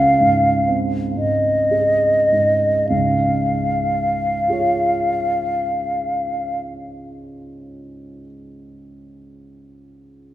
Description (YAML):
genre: classical, romantic duo for flute and grand piano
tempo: 31-45 BPM (dotted quarters)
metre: 6/8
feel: rubato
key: Db major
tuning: A4 = 438 Hz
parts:
  - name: mellow hollow silver concert flute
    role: melody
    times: 0.0-6.6 s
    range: Eb5 to F5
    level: -17 LUFS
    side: equal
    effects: none
  - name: dark grand piano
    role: accompaniment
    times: 0.0-10.3 s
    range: Db2 to Db5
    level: -24 LUFS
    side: right 2 dB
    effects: none
room: wet concert hall reverb, RT60 1.9 s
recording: recorded in a church or concert hall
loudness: -16 LUFS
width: side -14 dB against mid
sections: 0.0-2.9 A section; 2.9-9.1 B section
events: slowing down 0.0-2.9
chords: 0.0 Ab/Db; 2.9 Db